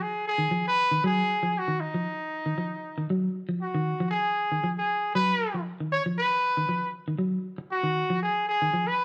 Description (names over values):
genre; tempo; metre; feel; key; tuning
afrobeat; 117 BPM; 4/4; swing 53% on 16ths; G# dorian; A4 = 441 Hz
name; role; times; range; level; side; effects
warm trumpet; melody; 0.0-9.0 s; D#4 to C#5; -28 LUFS; equal; none
semi-hollow electric guitar; arpeggios; 0.0-8.9 s; D#3 to F#3; -32 LUFS; equal; spring reverb
room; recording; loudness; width
moderate stone room reverb, RT60 1.1 s; band playing live in one room; -27 LUFS; mono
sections
0.0-9.0 A section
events
none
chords
0.0 G#7(no3)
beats
0.24 0.76 | 1.27 1.79 2.31 2.82 | 3.33 3.85 4.37 4.88 | 5.39 5.91 6.42 6.94 | 7.45 7.97 8.48 9.00